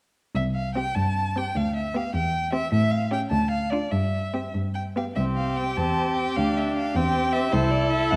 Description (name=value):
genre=quick classical-period movement for string quartet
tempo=100 BPM (dotted quarters)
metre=6/8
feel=rubato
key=C major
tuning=A4 = 435 Hz
part: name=rich violin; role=melody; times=0.4-8.2 s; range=C5 to A5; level=-31 LUFS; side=equal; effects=none
part: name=rich cello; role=bass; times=0.4-8.2 s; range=C2 to A2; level=-28 LUFS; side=equal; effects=none
part: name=rich violin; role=second line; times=0.8-8.2 s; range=F4 to A4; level=-33 LUFS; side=equal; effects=none
part: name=warm viola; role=accompaniment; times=0.8-8.2 s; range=B3 to E4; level=-31 LUFS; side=equal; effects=none
room=moderate scoring stage reverb, RT60 1.6 s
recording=dark, warm production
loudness=-25 LUFS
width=mono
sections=0.4-8.2 A section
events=none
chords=0.4 C5; 1.6 G/D; 2.1 C/E; 2.7 A7; 3.3 Dm; 3.9 C/G; 4.5 G; 5.2 C; 6.4 G5/D; 7.0 C/E; 7.5 Am/C